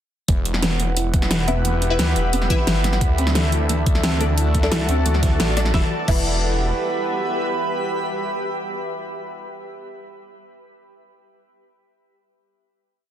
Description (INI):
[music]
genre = dark technical drum and bass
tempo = 176 BPM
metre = 4/4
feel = straight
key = E minor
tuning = A4 = 443 Hz
[part]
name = dark analog pad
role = sustained chords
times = 0.3-9.2 s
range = D4 to F#5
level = -29 LUFS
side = equal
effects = chorus, sidechain pumping
[part]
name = felt-muted upright piano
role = arpeggios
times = 0.3-6.2 s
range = E3 to E4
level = -28 LUFS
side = right 2 dB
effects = sidechain pumping, digital delay
[part]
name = phased detuned saw bass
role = bass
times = 0.3-6.7 s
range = E1 to D2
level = -21 LUFS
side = equal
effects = phaser
[part]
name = dubstep drum kit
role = drums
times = 0.3-6.2 s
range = crash cymbal, hi-hat, snare drum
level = -24 LUFS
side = equal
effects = overdrive
[part]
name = electronic kick drum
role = drums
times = 0.3-6.2 s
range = none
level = -20 LUFS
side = equal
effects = overdrive
[part]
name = granular cloud pad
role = texture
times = 1.3-9.2 s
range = F#4 to B5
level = -26 LUFS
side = equal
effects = built-in reverb, sidechain pumping
[part]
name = filtered dub chord stab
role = stabs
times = 1.5-9.8 s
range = D4 to E5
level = -28 LUFS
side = left 3 dB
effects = phaser, ensemble chorus, cassette tape, digital delay
[part]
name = pulsing pluck wobble bass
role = bass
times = 4.7-4.9 s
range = C2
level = -24 LUFS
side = equal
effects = chorus
[sound]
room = light reverb, digital ambience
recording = dense, heavily limited modern master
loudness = -18 LUFS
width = side -10 dB against mid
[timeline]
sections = 0.3-5.7 drop; 5.7-8.5 final chord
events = drop 0.3-5.7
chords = 0.3 Em; 3.0 D; 5.7 Em